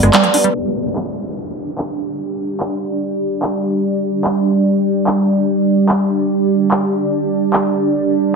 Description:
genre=psychedelic trance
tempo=146 BPM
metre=4/4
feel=straight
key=G major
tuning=A4 = 441 Hz
part: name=overtone-sweeping drone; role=sustained chords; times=0.0-8.4 s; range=G3 to B4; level=-17 LUFS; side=right 1 dB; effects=chorus, built-in reverb
part: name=liquid acid bass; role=riff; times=0.0-0.5 s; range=F3 to D4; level=-17 LUFS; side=right 4 dB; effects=chorus, auto-pan, tape echo
part: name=drum and bass drum kit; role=drums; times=0.0-7.6 s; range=handclaps, hi-hat, rim click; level=-19 LUFS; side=equal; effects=none
part: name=downlifter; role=sound effects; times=0.5-3.8 s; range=none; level=-28 LUFS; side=left 1 dB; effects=none
part: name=granular cloud pad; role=texture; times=1.4-8.4 s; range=D4 to D5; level=-19 LUFS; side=right 1 dB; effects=built-in reverb
room=wet digital room reverb, RT60 1.1 s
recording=low-pass filter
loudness=-14 LUFS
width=side -4 dB against mid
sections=0.5-8.4 A section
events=band accent 0.1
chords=0.0 G5

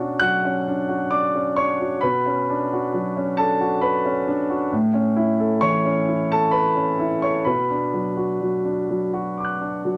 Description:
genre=neoclassical minimalist piano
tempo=63-68 BPM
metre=3/4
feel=rubato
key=B minor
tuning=A4 = 442 Hz
part: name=warm baby grand piano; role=solo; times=0.0-10.0 s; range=A2 to F#6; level=-22 LUFS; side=equal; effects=none
room=moderate studio reverb, RT60 0.6 s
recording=dark, warm production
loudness=-22 LUFS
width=mono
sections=0.0-10.0 A section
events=none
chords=0.0 Bmadd9; 4.7 A; 7.4 Bm

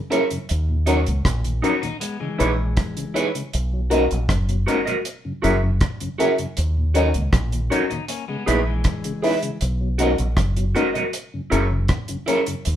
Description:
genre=lovers rock reggae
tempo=79 BPM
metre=4/4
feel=straight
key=B major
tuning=A4 = 439 Hz
part: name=FM electric piano with tremolo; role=accompaniment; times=0.1-12.4 s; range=C#4 to B4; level=-24 LUFS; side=left 3 dB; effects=none
part: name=mellow tonewheel organ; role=accompaniment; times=0.1-12.6 s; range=D#2 to E4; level=-30 LUFS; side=left 2 dB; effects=overdrive, chorus vibrato, slow rotary speaker
part: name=electric guitar through a small old amp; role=stabs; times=0.1-12.4 s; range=D#4 to E5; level=-22 LUFS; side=right 3 dB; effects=phaser
part: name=deep reggae drum kit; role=drums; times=0.1-12.8 s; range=hi-hat, kick drum, rim click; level=-24 LUFS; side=equal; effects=none
part: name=deep dub fingered electric bass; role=bass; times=0.5-12.8 s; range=F#1 to D#2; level=-21 LUFS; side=equal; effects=none
part: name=electric guitar at the edge of break-up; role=arpeggios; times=1.8-3.3, 7.9-9.6 s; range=E3 to D#4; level=-29 LUFS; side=left 4 dB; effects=none
room=moderate studio reverb, RT60 0.7 s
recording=band playing live in one room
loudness=-19 LUFS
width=side -10 dB against mid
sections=0.0-12.8 A section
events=none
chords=0.5 D#m7; 2.0 C#m7; 3.5 Bmaj7; 5.0 F#7; 6.6 D#m7; 8.1 C#m7; 9.6 Bmaj7; 11.1 F#7

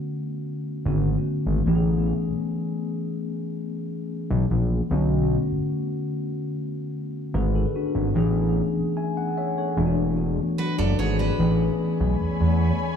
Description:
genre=contemporary R&B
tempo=74 BPM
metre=4/4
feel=straight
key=unclear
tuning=A4 = 442 Hz
part: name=mellow tine electric piano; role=accompaniment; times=0.0-13.0 s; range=D3 to G#5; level=-25 LUFS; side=left 2 dB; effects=slow stereo tremolo, analog delay
part: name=fat analog bass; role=bass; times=0.9-12.7 s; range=E1 to E2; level=-23 LUFS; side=equal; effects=none
part: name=picked steel-string acoustic guitar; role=arpeggios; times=10.6-11.6 s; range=F#4 to D5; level=-32 LUFS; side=right 5 dB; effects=analog delay
part: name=ethereal airy pad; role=sustained chords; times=11.8-13.0 s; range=A3 to B5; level=-30 LUFS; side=left 2 dB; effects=ensemble chorus, built-in reverb
room=light reverb, digital ambience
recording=echo-heavy mix, studio reverb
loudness=-22 LUFS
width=side -7 dB against mid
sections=0.0-11.4 A section; 11.4-13.0 B section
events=none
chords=0.0 Bm7; 1.7 Amaj7; 4.9 Bm7; 8.2 Amaj7; 11.4 Amaj9

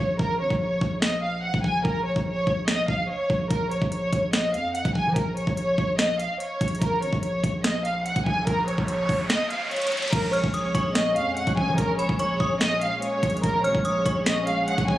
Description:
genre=hip hop, trap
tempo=145 BPM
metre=4/4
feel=half-time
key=Bb minor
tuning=A4 = 439 Hz
part: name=warm symphonic violin section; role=melody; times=0.0-15.0 s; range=Bb4 to Ab5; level=-25 LUFS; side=equal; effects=low-pass filter, digital delay
part: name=distorted 808-style bass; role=bass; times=0.0-15.0 s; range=Ab1 to F3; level=-29 LUFS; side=equal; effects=distortion
part: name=trap drum kit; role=drums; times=0.2-15.0 s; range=crash cymbal, finger snaps, hi-hat, kick drum, snare drum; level=-26 LUFS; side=equal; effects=overdrive
part: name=riser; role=sound effects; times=7.8-10.1 s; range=none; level=-33 LUFS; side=equal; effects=none
part: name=muted symphonic string section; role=sustained chords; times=10.1-15.0 s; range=Bb2 to Db4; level=-31 LUFS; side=left 1 dB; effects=none
part: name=metallic FM bell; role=second line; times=10.3-15.0 s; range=Cb6 to F6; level=-32 LUFS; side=equal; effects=chorus, digital delay
room=light reverb, digital ambience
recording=recorded on a phone in the room, club reverb, compression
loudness=-22 LUFS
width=side -14 dB against mid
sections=0.0-10.1 A section; 10.1-15.0 B section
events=break 0.0-3.5; riser 7.8-10.1; kick muted 9.3-10.1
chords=0.2 Bbm; 10.1 Bbm7

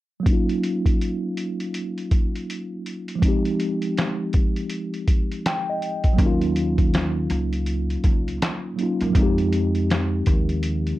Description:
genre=lo-fi hip hop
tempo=81 BPM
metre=4/4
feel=swing 62% on 16ths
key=Eb dorian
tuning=A4 = 440 Hz
part: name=mellow tine electric piano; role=accompaniment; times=0.2-11.0 s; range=F3 to G5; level=-24 LUFS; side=equal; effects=medium stereo tremolo, low-pass filter
part: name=lo-fi sampler-style drum kit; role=drums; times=0.3-11.0 s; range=handclaps, hi-hat, kick drum, snare drum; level=-22 LUFS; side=equal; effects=overdrive
part: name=upright bass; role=bass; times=6.2-10.9 s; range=Db2 to Gb2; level=-25 LUFS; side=equal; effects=none
room=light reverb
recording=dark, warm production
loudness=-20 LUFS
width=side -16 dB against mid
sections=0.3-6.2 A section; 6.2-11.0 B section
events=filter sweep on tine electric piano 0.3-6.2; tine electric piano fill 5.1-6.2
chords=0.3 Ebm9; 3.2 Fm9; 6.2 Ebm9; 9.1 Fm9

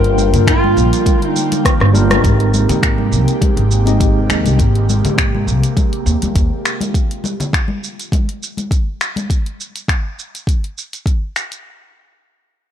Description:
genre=sunset chillout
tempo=102 BPM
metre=4/4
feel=swing 54% on 16ths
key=unclear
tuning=A4 = 439 Hz
part: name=nylon-string guitar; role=melody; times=0.0-1.6 s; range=F4 to Bb4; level=-19 LUFS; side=equal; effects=tape echo
part: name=tine electric piano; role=accompaniment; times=0.0-4.6 s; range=G3 to Eb5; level=-20 LUFS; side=equal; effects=fast stereo tremolo, auto-pan, ping-pong delay
part: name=airy breathy pad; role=sustained chords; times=0.0-6.9 s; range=C3 to G5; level=-22 LUFS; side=right 2 dB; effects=chorus, phaser
part: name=upright bass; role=bass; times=0.0-6.5 s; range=G1 to Ab2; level=-15 LUFS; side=equal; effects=none
part: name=deep house drum kit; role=drums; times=0.0-11.6 s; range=finger snaps, hi-hat, rim click, shaker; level=-21 LUFS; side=equal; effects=none
part: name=congas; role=percussion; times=0.2-9.3 s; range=none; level=-24 LUFS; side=left 3 dB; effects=none
part: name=electronic kick drum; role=drums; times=0.5-11.2 s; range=none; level=-16 LUFS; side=equal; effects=none
room=light reverb, digital ambience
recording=dark, warm production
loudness=-13 LUFS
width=side -9 dB against mid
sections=0.0-2.2 A section; 2.2-11.6 B section; 11.6-12.7 C section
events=drum fill 1.6-2.2; band accent 2.1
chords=0.0 Gm7; 2.2 Abmaj9; 6.6 Fm9; 9.3 N.C.

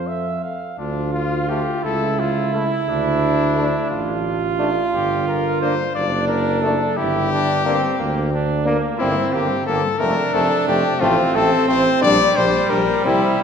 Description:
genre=classical, brass quintet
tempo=59 BPM (dotted quarters)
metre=6/8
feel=rubato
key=D minor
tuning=A4 = 440 Hz
part: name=warm trumpet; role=melody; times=0.0-13.4 s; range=D4 to F5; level=-21 LUFS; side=left 5 dB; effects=none
part: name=clear flugelhorn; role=second line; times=0.0-13.4 s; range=G3 to F5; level=-22 LUFS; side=right 4 dB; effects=none
part: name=warm French horn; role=accompaniment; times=0.0-13.4 s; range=C4 to A4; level=-25 LUFS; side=left 3 dB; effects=none
part: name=mellow tuba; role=bass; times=0.0-13.2 s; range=F1 to F2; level=-23 LUFS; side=right 1 dB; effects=none
part: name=brilliant trombone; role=accompaniment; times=1.5-13.2 s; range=G3 to Bb3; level=-27 LUFS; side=right 1 dB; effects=none
room=wet concert hall reverb, RT60 2.0 s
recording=recorded in a church or concert hall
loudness=-17 LUFS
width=side -7 dB against mid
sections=0.8-13.4 A section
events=none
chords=0.0 F; 0.8 Dm; 1.8 A/C#; 2.9 Dm; 4.9 Gm; 6.0 D/F#; 7.0 Gm; 9.0 C5/G; 10.0 F; 11.0 Am; 12.0 Gm/Bb

